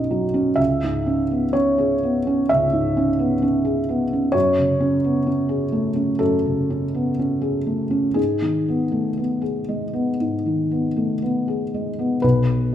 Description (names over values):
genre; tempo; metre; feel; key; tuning
neoclassical minimalist piano; 58-65 BPM; 4/4; rubato; unclear; A4 = 441 Hz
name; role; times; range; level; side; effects
felt-muted upright piano; solo; 0.0-12.7 s; B1 to E5; -18 LUFS; equal; none
room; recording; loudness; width
moderate recital hall reverb, RT60 1.5 s; recorded in a church or concert hall; -18 LUFS; side -10 dB against mid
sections
0.0-12.2 A section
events
none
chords
0.0 Badd9; 0.6 C#m7; 4.3 F#madd9; 8.2 G#m; 12.2 N.C.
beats
| 0.59 1.54 2.49 3.42 | 4.34 5.28 6.22 7.18 | 8.18 9.20 10.21 11.22 | 12.23